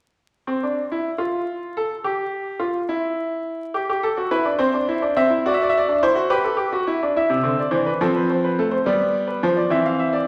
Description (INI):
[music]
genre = classical, baroque-style 3-part fugue for grand piano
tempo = 70 BPM (dotted quarters)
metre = 6/8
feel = straight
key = C major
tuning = A4 = 439 Hz
[part]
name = bright baby grand piano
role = solo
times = 0.5-10.3 s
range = C3 to F5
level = -21 LUFS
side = equal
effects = none
[sound]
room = wet recital hall reverb, RT60 1.4 s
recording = vinyl crackle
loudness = -21 LUFS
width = mono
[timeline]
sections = 0.3-7.1 A section; 7.1-10.3 B section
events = none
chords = 0.3 N.C.; 3.7 G; 4.6 C; 5.4 D7/F#; 6.3 G; 7.1 C; 8.0 F; 8.9 G7; 9.7 C/E